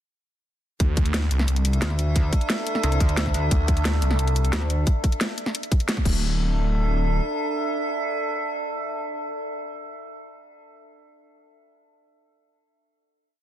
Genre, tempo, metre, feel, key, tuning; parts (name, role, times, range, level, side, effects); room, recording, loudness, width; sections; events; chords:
dark technical drum and bass; 177 BPM; 4/4; straight; A4 = 445 Hz
metallic inharmonic drone; sustained chords; 1.4-9.6 s; D4 to E5; -29 LUFS; right 1 dB; chorus, built-in reverb, sidechain pumping
phased detuned saw bass; bass; 0.8-7.2 s; D1 to D2; -21 LUFS; equal; phaser
drum and bass drum kit; drums; 0.8-6.1 s; crash cymbal, hi-hat, snare drum; -28 LUFS; equal; overdrive
electronic kick drum; drums; 0.8-6.1 s; -21 LUFS; equal; overdrive
pulsing pluck wobble bass; bass; 1.8-4.9 s; C2 to D2; -23 LUFS; equal; chorus
little or no reverb; dense, heavily limited modern master; -21 LUFS; side -12 dB against mid
0.8-6.2 drop; 6.2-8.9 final hit
drop 0.8-6.2; band accent 5.9
0.8 D5